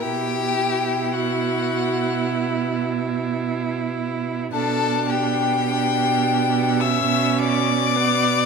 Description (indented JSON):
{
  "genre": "classical, slow romantic movement for string quartet",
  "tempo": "53 BPM",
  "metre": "4/4",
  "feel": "rubato",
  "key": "unclear",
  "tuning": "A4 = 441 Hz",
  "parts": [
    { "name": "rich violin", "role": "melody", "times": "0.0-8.5 s", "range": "F#5 to E6", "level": "-23 LUFS", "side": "left 9 dB", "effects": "none" },
    { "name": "warm violin", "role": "second line", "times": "0.0-8.5 s", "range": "F#4 to E5", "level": "-26 LUFS", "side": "left 4 dB", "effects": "none" },
    { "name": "rich viola", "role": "accompaniment", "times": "0.0-8.5 s", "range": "B3 to E4", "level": "-26 LUFS", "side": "right 4 dB", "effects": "none" },
    { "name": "clear cello", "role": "bass", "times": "0.0-8.5 s", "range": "B2", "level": "-24 LUFS", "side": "right 7 dB", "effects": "none" }
  ],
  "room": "moderate scoring stage reverb, RT60 1.7 s",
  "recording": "none",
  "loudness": "-19 LUFS",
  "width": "side -5 dB against mid",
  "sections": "0.0-8.5 A section",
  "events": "none",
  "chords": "0.0 B5; 4.5 G/B"
}